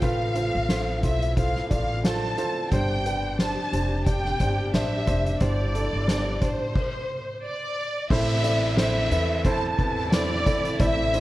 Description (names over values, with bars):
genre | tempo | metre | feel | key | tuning
piano-driven pop | 89 BPM | 4/4 | swing 56% on 16ths | A minor | A4 = 441 Hz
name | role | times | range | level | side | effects
warm studio violin section | melody | 0.0-11.2 s | C5 to A5 | -28 LUFS | equal | none
felt-muted upright piano | accompaniment | 0.0-11.2 s | G2 to D5 | -28 LUFS | right 2 dB | none
warm studio string section | sustained chords | 0.0-11.2 s | C3 to G4 | -37 LUFS | equal | none
upright bass | bass | 0.0-11.2 s | F1 to E2 | -27 LUFS | equal | tube saturation
soft-mallet drum kit | drums | 0.0-11.2 s | crash cymbal, hi-hat, kick drum, snare drum | -27 LUFS | equal | none
downlifter | sound effects | 8.1-11.2 s | none | -36 LUFS | equal | none
room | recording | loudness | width
light reverb | worn, warbling old tape, cassette tape, warbly pitch drift | -22 LUFS | side -16 dB against mid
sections
0.0-8.1 A section; 8.1-11.2 B section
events
stop 6.8-8.1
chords
0.0 F; 2.7 Gsus4; 8.1 Am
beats
| 0.02 0.69 1.37 2.04 | 2.72 3.39 4.06 4.74 | 5.41 6.08 6.76 7.43 | 8.11 8.78 9.45 10.13 | 10.80